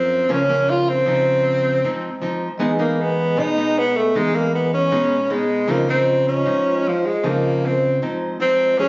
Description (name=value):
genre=bossa nova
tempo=156 BPM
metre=4/4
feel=straight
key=Db major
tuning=A4 = 440 Hz
part: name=breathy tenor saxophone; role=melody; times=0.0-8.9 s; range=F3 to F4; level=-18 LUFS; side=equal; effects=none
part: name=nylon-string guitar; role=accompaniment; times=0.0-8.9 s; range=Gb2 to Ab4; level=-22 LUFS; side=equal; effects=none
part: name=vibraphone with soft mallets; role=accompaniment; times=2.6-8.9 s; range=Db4 to G#5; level=-27 LUFS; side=right 1 dB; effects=none
room=moderate studio reverb, RT60 0.5 s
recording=recorded on a phone in the room, studio reverb, nothing above 7.5 kHz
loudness=-16 LUFS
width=side -26 dB against mid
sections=0.0-8.9 A section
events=none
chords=0.0 Gbmaj7; 1.1 Dbmaj9; 2.6 Emaj7; 5.7 Dbmaj9